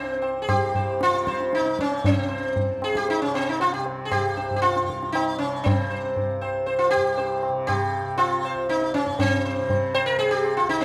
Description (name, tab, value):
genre	indian classical, Hindustani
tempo	117 BPM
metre	7/4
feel	straight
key	C raga bhairavi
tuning	A4 = 441 Hz
part	sitar	melody	0.0-10.8 s	C4 to C5	-25 LUFS	equal	none
part	tanpura	drone	0.0-10.8 s	C2 to C3	-36 LUFS	equal	none
part	tabla	percussion	0.2-10.8 s	none	-31 LUFS	equal	none
room	moderate recital hall reverb, RT60 1.6 s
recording	none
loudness	-24 LUFS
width	mono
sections	0.0-10.8 A section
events	speeding up 0.0-10.8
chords	none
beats	0.48 1.00 1.52 | 2.04 2.56 3.08 3.60 4.11 4.62 5.14 | 5.65 6.16 6.67 7.17 7.68 8.19 8.69 | 9.20 9.70 10.20 10.70